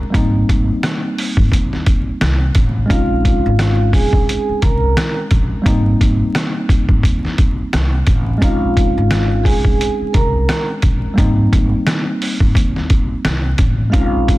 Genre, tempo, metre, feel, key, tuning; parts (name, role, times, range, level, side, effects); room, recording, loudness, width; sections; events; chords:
hip hop, boom-bap hip-hop; 87 BPM; 4/4; swing 60% on 16ths; Ab major; A4 = 439 Hz
mellow tine electric piano; accompaniment; 0.0-14.4 s; G3 to Eb4; -21 LUFS; equal; medium stereo tremolo, cassette tape, high-pass filter, low-pass filter
upright bass; bass; 0.1-14.4 s; Ab1 to Eb2; -18 LUFS; equal
trip hop sampler-style drum kit; drums; 0.1-14.4 s; hi-hat, kick drum, rim click, snare drum; -16 LUFS; equal
vibraphone with soft mallets; melody; 2.9-14.4 s; F4 to Bb5; -21 LUFS; right 1 dB; high-pass filter, low-pass filter
little or no reverb; dense, heavily limited modern master, vinyl crackle; -13 LUFS; side -18 dB against mid
0.0-14.4 A section
0.1 Abmaj9; 2.9 Bbm11; 5.7 Abmaj9; 8.4 Bbm11; 11.2 Abmaj9